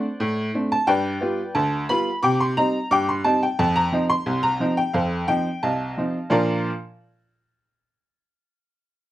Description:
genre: ragtime piano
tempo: 88 BPM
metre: 2/4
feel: straight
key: Bb major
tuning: A4 = 436 Hz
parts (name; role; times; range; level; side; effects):
- bright upright piano; solo; 0.0-6.7 s; C2 to D6; -20 LUFS; equal; none
room: light reverb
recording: dark, warm production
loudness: -20 LUFS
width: side -14 dB against mid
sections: 0.0-6.3 A section; 6.3-7.7 B section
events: none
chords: 0.0 D7; 0.9 G7; 2.2 Cm; 3.6 F5; 5.0 F7; 6.3 Bb

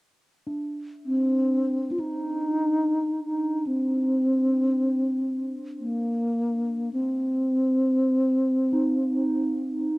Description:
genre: world meditative, free-time meditation music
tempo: free time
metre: none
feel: none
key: unclear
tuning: A4 = 440 Hz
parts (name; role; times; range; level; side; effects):
- quartz singing bowl; texture; 0.5-10.0 s; D4 to Eb4; -33 LUFS; right 1 dB; none
- mellow bass flute; melody; 1.1-9.9 s; Bb3 to F4; -23 LUFS; equal; cassette tape, analog delay
room: wet booth ambience, RT60 0.2 s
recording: home recording on cassette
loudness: -22 LUFS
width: side -22 dB against mid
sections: 0.0-10.0 A section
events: none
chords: none

